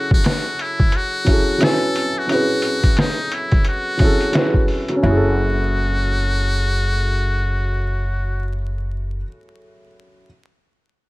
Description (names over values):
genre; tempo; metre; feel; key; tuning
lo-fi hip hop; 88 BPM; 4/4; swing 60% on 16ths; F# minor; A4 = 442 Hz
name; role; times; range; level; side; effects
trumpet with metal mute; melody; 0.0-8.5 s; D#4 to A4; -23 LUFS; left 1 dB; none
felt-muted upright piano; accompaniment; 0.0-10.3 s; F#3 to G#5; -22 LUFS; equal; cassette tape, plate reverb
lo-fi sampler-style drum kit; drums; 0.1-5.0 s; hi-hat, kick drum, snare drum; -17 LUFS; equal; none
upright bass; bass; 5.0-9.2 s; F#1; -20 LUFS; equal; none
room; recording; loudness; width
light reverb; vinyl crackle; -16 LUFS; side -20 dB against mid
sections
0.0-5.0 A section; 5.0-7.8 B section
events
break 0.0-5.0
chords
0.0 F#m7